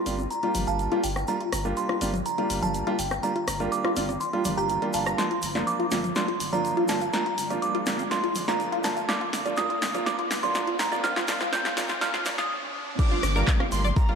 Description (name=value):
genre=progressive house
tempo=123 BPM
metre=4/4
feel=straight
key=G minor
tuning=A4 = 440 Hz
part: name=glassy synth bell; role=melody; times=0.0-14.2 s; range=G5 to G6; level=-30 LUFS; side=right 2 dB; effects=chorus, sidechain pumping, dub echo
part: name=clear concert grand piano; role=stabs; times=0.0-14.2 s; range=F3 to F4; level=-31 LUFS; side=right 2 dB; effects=sidechain pumping, dub echo
part: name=riser and downlifter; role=sound effects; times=0.5-14.2 s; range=none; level=-37 LUFS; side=equal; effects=none
part: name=saturated sub bass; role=bass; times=0.1-13.9 s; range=G1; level=-33 LUFS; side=equal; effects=sidechain pumping
part: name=deep house drum kit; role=drums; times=0.1-14.2 s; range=crash cymbal, handclaps, hi-hat, rim click, snare drum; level=-31 LUFS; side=left 1 dB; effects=sidechain pumping on hats, sidechain pumping on cymbals
part: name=congas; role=percussion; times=0.1-13.9 s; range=none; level=-35 LUFS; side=left 1 dB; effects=sidechain pumping on perc
part: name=egg shaker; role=percussion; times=0.1-14.1 s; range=none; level=-40 LUFS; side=right 1 dB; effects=none
part: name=tight sequenced synth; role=arpeggios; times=0.2-14.2 s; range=F4 to D6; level=-32 LUFS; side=left 2 dB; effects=chorus, phaser, sidechain pumping, dub echo
part: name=rich studio violin section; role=second line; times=13.0-14.2 s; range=Bb5 to D6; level=-34 LUFS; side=left 1 dB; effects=sidechain pumping
part: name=electronic kick drum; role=drums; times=13.0-14.1 s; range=none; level=-22 LUFS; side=equal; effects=none
room=wet concert hall reverb, RT60 2.3 s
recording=dark, warm production, high-pass filter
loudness=-24 LUFS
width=side -6 dB against mid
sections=0.0-13.0 A section; 13.0-14.2 B section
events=build-up 0.0-13.0; filter sweep on synth arpeggio sound 0.0-13.0; filter sweep 0.0-13.0; riser 0.5-13.0; drum fill 5.2-12.5; stop 12.5-13.0; drop 13.0-14.2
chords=0.0 Gm7